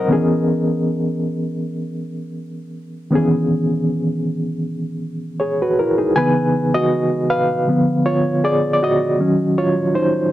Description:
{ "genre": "soul", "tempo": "79 BPM", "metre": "4/4", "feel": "swing 54% on 16ths", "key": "unclear", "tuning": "A4 = 440 Hz", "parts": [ { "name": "barky reed electric piano", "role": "solo", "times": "0.0-10.3 s", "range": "C#3 to G#5", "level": "-16 LUFS", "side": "equal", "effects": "overdrive, fast tremolo" } ], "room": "moderate small room reverb, RT60 0.5 s", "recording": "dry, close 1970s-style studio recording", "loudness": "-16 LUFS", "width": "side -14 dB against mid", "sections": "0.0-6.2 A section; 6.2-10.3 A section", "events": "reed electric piano solo 6.2-10.3", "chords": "0.1 C#m7; 7.7 Ddim7; 9.2 D#m7" }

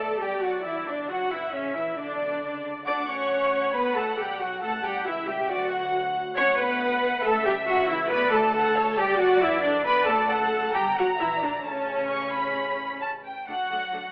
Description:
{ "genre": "quick classical-period movement for string orchestra", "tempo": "136 BPM", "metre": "4/4", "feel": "straight", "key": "D major from 6.4 s", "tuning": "A4 = 440 Hz", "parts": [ { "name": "muted symphonic violin section", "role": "melody", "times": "0.0-14.1 s", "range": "C#5 to C#6", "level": "-32 LUFS", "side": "equal", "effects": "none" }, { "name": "muted symphonic violin section", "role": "second line", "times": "0.0-14.1 s", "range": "F#4 to D6", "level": "-31 LUFS", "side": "equal", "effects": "none" }, { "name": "muted symphonic viola section", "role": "accompaniment", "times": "0.0-14.0 s", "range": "A3 to D5", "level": "-28 LUFS", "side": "equal", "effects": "none" }, { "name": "muted symphonic cello section", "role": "bass", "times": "0.0-14.1 s", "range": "C#3 to D4", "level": "-38 LUFS", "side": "equal", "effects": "none" }, { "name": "muted symphonic double bass section", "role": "bass", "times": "0.0-14.0 s", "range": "F#1 to D2", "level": "-46 LUFS", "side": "equal", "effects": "none" } ], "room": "moderate recital hall reverb, RT60 1.5 s", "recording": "telephone sound", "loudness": "-25 LUFS", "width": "mono", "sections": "0.0-13.5 A section", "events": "none", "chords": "0.0 Bm; 1.1 F#7; 2.0 Bm; 2.9 D; 4.6 A7; 5.5 D; 7.2 A7/C#; 8.1 D; 9.0 D/F#; 10.7 Gm; 11.7 A; 13.5 D" }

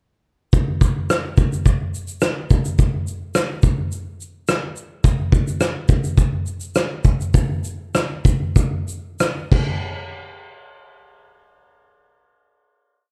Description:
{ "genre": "pop", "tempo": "90-106 BPM", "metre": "4/4", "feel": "straight", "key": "none", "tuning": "none", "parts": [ { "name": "loose indie drum kit", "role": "drums", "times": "0.5-9.7 s", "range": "crash cymbal, kick drum, rim click, shaker", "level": "-20 LUFS", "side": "equal", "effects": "none" } ], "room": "little or no reverb", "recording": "dark, warm production", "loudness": "-20 LUFS", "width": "mono", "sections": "0.5-9.8 verse; 9.8-12.5 final hit", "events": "slowing down 5.0-9.8", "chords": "none" }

